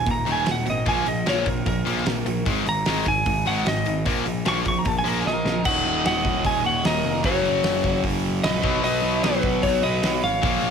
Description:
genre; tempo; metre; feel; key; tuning
hard rock; 151 BPM; 4/4; straight; Eb minor from 5.7 s; A4 = 444 Hz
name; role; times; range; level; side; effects
lightly driven lead guitar; melody; 0.0-10.7 s; Bb4 to Db6; -24 LUFS; left 1 dB; none
overdriven semi-hollow guitar; riff; 0.0-10.7 s; Eb2 to B3; -27 LUFS; left 11 dB; none
sludgy distorted guitar; riff; 0.0-10.7 s; Eb2 to B3; -28 LUFS; right 13 dB; overdrive
fuzz picked electric bass; bass; 0.0-10.7 s; Eb1 to B1; -29 LUFS; equal; overdrive
big rock drum kit; drums; 0.1-10.5 s; crash cymbal, hi-hat, kick drum, snare drum; -27 LUFS; right 1 dB; none
octave-fuzz lead guitar; second line; 5.3-10.7 s; Gb4 to Eb5; -31 LUFS; right 4 dB; distortion
room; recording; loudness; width
light reverb, small room ambience; none; -20 LUFS; side -7 dB against mid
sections
0.0-5.7 A section; 5.7-10.7 B section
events
lead electric guitar solo 0.0-5.7; drum fill 5.3-5.7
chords
0.0 Eb5; 0.9 Bb5; 2.5 Ab5; 4.1 Bbsus4; 5.7 Ebm; 7.2 Gb; 8.6 B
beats
0.07 0.47 | 0.87 1.27 1.67 2.06 | 2.46 2.86 3.26 3.66 | 4.06 4.46 4.86 5.26 | 5.65 6.05 6.45 6.85 | 7.25 7.64 8.04 8.44 | 8.84 9.24 9.64 10.03 | 10.43

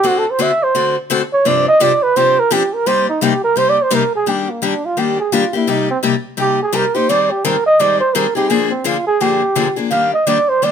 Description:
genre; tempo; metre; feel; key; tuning
jazz; 170 BPM; 4/4; swing 60% on 8ths; C minor, Eb major from 4.3 s; A4 = 440 Hz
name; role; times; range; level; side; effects
breathy flugelhorn; melody; 0.0-10.7 s; Bb3 to F5; -14 LUFS; right 2 dB; none
picked steel-string acoustic guitar; accompaniment; 0.0-10.7 s; G2 to A4; -17 LUFS; left 6 dB; none
room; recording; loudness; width
light reverb; minimal, uncompressed stereo recording; -13 LUFS; side -8 dB against mid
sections
0.0-4.3 A section; 4.3-10.7 A section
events
flugelhorn solo 0.0-10.7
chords
0.0 D7; 1.4 G7sus4; 2.9 Cm7; 4.3 Ebmaj7; 5.7 Cm7; 7.1 Abmaj7; 8.5 Bb7; 9.9 Ebmaj7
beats
| 0.04 0.39 0.75 1.10 | 1.45 1.80 2.15 2.51 | 2.86 3.21 3.56 3.92 | 4.27 4.62 4.97 5.33 | 5.68 6.03 6.38 6.74 | 7.09 7.44 7.79 8.15 | 8.50 8.85 9.20 9.55 | 9.91 10.26 10.61

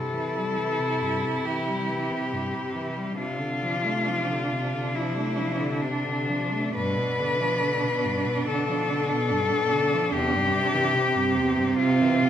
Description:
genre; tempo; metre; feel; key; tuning
classical, lyrical piece for cello ensemble; 61-74 BPM; 4/4; rubato; C major; A4 = 436 Hz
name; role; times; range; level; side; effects
rich cello; melody; 0.0-12.3 s; D4 to B4; -26 LUFS; left 3 dB; none
warm cello; second line; 0.0-12.3 s; C4 to E4; -29 LUFS; right 5 dB; none
rich cello; accompaniment; 0.0-12.3 s; E2 to A3; -31 LUFS; left 1 dB; none
rich cello; bass; 0.0-12.3 s; B2 to C3; -32 LUFS; right 1 dB; none
room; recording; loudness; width
wet recital hall reverb, RT60 1.4 s; none; -23 LUFS; side -10 dB against mid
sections
0.0-12.3 A section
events
none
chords
0.0 C; 3.2 Dm7/C; 6.8 G7; 10.1 C/E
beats
0.57 1.46 2.33 | 3.19 4.07 4.95 5.82 | 6.76 7.63 8.48 9.31 | 10.14 10.96 11.79

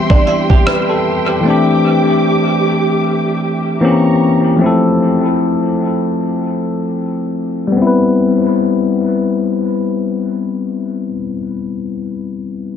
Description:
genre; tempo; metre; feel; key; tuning
contemporary R&B; 76 BPM; 4/4; swing 58% on 16ths; C major; A4 = 440 Hz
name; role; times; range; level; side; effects
bell-like tine electric piano; accompaniment; 0.0-12.8 s; E3 to C5; -13 LUFS; left 2 dB; low-pass filter, dub echo
warm studio string section; sustained chords; 0.0-4.6 s; G4 to D6; -19 LUFS; right 3 dB; low-pass filter
flamenco guitar; arpeggios; 0.1-1.4 s; D4 to G4; -21 LUFS; right 3 dB; low-pass filter, dub echo
dusty soul sampler-style drum kit; drums; 0.1-0.9 s; kick drum, rim click; -15 LUFS; right 1 dB; dub echo
room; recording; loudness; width
moderate spring reverb, RT60 2.0 s; echo-heavy mix, nothing above 10.7 kHz; -12 LUFS; side -8 dB against mid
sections
0.0-7.8 A section; 7.8-10.9 B section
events
filter sweep 0.0-7.8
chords
0.0 Cmaj7; 1.5 D9sus4; 3.8 C7b9; 4.6 Fmaj7; 7.8 Cmaj7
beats
0.66 | 1.45 2.24 3.03 3.82 | 4.61 5.40 6.19 6.98 | 7.77 8.56 9.35 10.14

